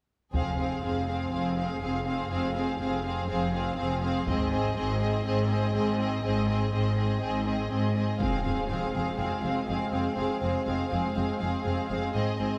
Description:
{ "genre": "cinematic, epic orchestral film score", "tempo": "122 BPM", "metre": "4/4", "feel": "straight", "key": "F minor", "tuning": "A4 = 445 Hz", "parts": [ { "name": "warm symphonic violin section", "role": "second line", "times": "0.3-12.6 s", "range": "Ab4", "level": "-37 LUFS", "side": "equal", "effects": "none" }, { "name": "warm symphonic viola section", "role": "accompaniment", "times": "0.3-12.6 s", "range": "C4", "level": "-35 LUFS", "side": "equal", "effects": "none" }, { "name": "rich symphonic cello section", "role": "bass", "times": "0.3-12.5 s", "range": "F2 to Ab2", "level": "-35 LUFS", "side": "equal", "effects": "none" }, { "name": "rich symphonic double bass section", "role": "bass", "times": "0.3-12.5 s", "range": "F1 to Ab1", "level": "-34 LUFS", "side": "equal", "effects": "none" }, { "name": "taiko ensemble", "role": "drums", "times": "0.3-1.3, 4.3-5.2 s", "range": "none", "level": "-36 LUFS", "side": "equal", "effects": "none" }, { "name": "warm symphonic violin section", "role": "melody", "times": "0.4-12.6 s", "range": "Eb5 to F5", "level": "-38 LUFS", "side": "equal", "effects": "none" }, { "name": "warm French horn section", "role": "sustained chords", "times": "8.2-12.6 s", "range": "Ab3 to C4", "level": "-36 LUFS", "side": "equal", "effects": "none" }, { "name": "impact", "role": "sound effects", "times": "8.2-10.2 s", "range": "none", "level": "-42 LUFS", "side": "equal", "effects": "none" } ], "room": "wet scoring stage reverb, RT60 1.9 s", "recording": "none", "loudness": "-29 LUFS", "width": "mono", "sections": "0.3-8.2 A section; 8.2-12.6 B section", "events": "build-up 8.2-12.6; impact 8.2-10.2", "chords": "0.3 Fm; 4.3 Ab; 8.2 Fm" }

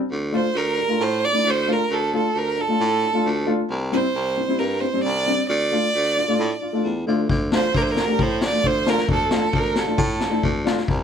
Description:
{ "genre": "klezmer", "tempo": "134 BPM", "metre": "4/4", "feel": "straight", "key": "D minor", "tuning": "A4 = 440 Hz", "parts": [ { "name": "bright baritone saxophone", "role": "bass", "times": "0.1-11.0 s", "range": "C2 to A2", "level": "-25 LUFS", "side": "equal", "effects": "none" }, { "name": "rich violin", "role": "melody", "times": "0.3-10.7 s", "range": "A4 to D5", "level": "-22 LUFS", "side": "right 4 dB", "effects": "none" }, { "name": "warm upright piano", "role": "accompaniment", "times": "0.3-10.8 s", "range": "G3 to G4", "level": "-24 LUFS", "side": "left 3 dB", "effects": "none" }, { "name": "street-band drum kit", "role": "drums", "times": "7.3-11.0 s", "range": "kick drum, snare drum", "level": "-23 LUFS", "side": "left 3 dB", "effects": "none" } ], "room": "moderate small room reverb, RT60 0.5 s", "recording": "none", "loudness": "-19 LUFS", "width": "side -8 dB against mid", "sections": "0.0-7.3 A section; 7.3-11.0 A section", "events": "none", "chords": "0.1 Dm; 3.7 C; 5.5 Dm" }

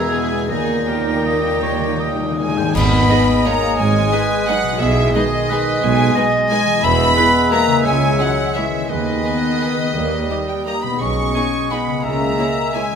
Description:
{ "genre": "classical, orchestral ballroom waltz", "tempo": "150-192 BPM", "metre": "3/4", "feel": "rubato", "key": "G# minor", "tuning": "A4 = 440 Hz", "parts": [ { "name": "warm symphonic violin section", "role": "melody", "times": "0.0-13.0 s", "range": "D#5 to C#6", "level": "-23 LUFS", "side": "left 3 dB", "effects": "none" }, { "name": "bright silver concert flute", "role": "second line", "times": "0.0-13.0 s", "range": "D#5 to A#6", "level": "-24 LUFS", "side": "right 1 dB", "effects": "none" }, { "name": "clear clarinet", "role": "second line", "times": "0.0-13.0 s", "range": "D#4 to G#5", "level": "-25 LUFS", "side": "left 1 dB", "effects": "none" }, { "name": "clear oboe", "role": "second line", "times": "0.0-13.0 s", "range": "A#4 to G5", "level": "-27 LUFS", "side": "right 3 dB", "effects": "none" }, { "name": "warm symphonic violin section", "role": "second line", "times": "0.0-12.8 s", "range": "G4 to D#5", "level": "-31 LUFS", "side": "left 2 dB", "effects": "none" }, { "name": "dark symphonic viola section", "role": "accompaniment", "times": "0.0-12.8 s", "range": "G3 to E4", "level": "-25 LUFS", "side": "right 2 dB", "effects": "none" }, { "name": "warm bassoon", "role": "accompaniment", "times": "0.0-13.0 s", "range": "A#2 to G#3", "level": "-25 LUFS", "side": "right 4 dB", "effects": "none" }, { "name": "mellow French horn section", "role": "sustained chords", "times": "0.0-13.0 s", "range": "D#3 to A#4", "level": "-23 LUFS", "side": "left 4 dB", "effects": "none" }, { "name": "concert harp", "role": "arpeggios", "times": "0.0-13.0 s", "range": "G#2 to G#4", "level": "-27 LUFS", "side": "left 7 dB", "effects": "none" }, { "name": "dark symphonic double bass section", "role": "bass", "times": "0.0-12.3 s", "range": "E1 to D#2", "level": "-25 LUFS", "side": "right 4 dB", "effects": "none" }, { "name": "warm symphonic cello section", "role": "bass", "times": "0.0-12.3 s", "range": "C#2 to C#3", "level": "-26 LUFS", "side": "right 3 dB", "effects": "none" }, { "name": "cymbal swell, clash cymbals and concert bass drum", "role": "percussion", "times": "0.5-3.4 s", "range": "none", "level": "-26 LUFS", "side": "equal", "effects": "none" }, { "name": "timpani", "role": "percussion", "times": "0.5-2.7, 8.9-10.4 s", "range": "D#3", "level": "-28 LUFS", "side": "left 4 dB", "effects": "none" }, { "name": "dark tuba", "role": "bass", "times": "2.8-12.3 s", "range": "E1 to D#2", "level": "-26 LUFS", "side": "right 6 dB", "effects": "none" } ], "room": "moderate scoring stage reverb, RT60 1.7 s", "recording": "none", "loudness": "-15 LUFS", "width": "side -7 dB against mid", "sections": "0.0-2.8 A section; 2.8-13.0 B section", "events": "timpani fill 0.5-2.8; band accent 2.8-3.1", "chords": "0.5 D#; 2.8 G#m; 4.8 G#m/B; 6.8 E; 7.9 C#m; 8.9 G#m/D#; 10.0 D#; 11.0 G#m/B; 12.0 A#m7b5/C#" }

